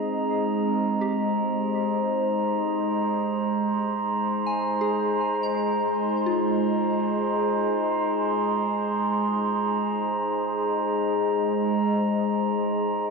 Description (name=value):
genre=ambient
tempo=free time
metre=none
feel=none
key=Ab major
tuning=A4 = 442 Hz
part: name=evolving wavetable pad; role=sustained chords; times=0.0-13.1 s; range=Ab3 to Eb5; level=-24 LUFS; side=equal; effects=phaser, built-in reverb
part: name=soft synth bell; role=arpeggios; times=0.0-13.1 s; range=F4 to Bb5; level=-34 LUFS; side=left 2 dB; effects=chorus, phaser, dub echo
part: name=glass harmonica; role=texture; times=0.0-13.1 s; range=Bb5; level=-29 LUFS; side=right 3 dB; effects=none
room=wet echo chamber reverb, RT60 2.2 s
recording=echo-heavy mix, cassette tape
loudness=-22 LUFS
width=side -4 dB against mid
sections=0.0-13.1 A section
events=fade-in on synth bell 0.0-13.1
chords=0.0 Abmaj7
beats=free time